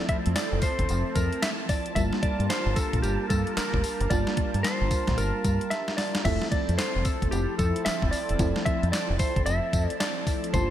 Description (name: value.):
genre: R&B, new jack swing.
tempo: 112 BPM.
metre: 4/4.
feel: swing 62% on 16ths.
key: unclear.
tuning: A4 = 440 Hz.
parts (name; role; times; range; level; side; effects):
mellow electric guitar; melody; 0.0-10.7 s; G4 to E5; -30 LUFS; equal; none.
FM electric piano with soft pad layer; accompaniment; 0.0-10.7 s; F3 to A5; -33 LUFS; equal; chorus, phaser.
warm analog pad; sustained chords; 0.0-10.7 s; F3 to A5; -34 LUFS; equal; chorus.
deep dub fingered electric bass; bass; 0.1-10.7 s; E1 to G2; -27 LUFS; equal; none.
clean 12-bit digital drum machine; drums; 0.1-10.7 s; crash cymbal, handclaps, hi-hat, kick drum, snare drum, tambourine; -28 LUFS; equal; overdrive, gated reverb.
room: light reverb.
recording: bright 1980s-style digital production.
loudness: -24 LUFS.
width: side -11 dB against mid.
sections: 0.0-10.7 A section.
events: drum fill 5.7-6.3.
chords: 0.0 Fmaj7; 2.0 Gm9; 6.3 Fmaj7.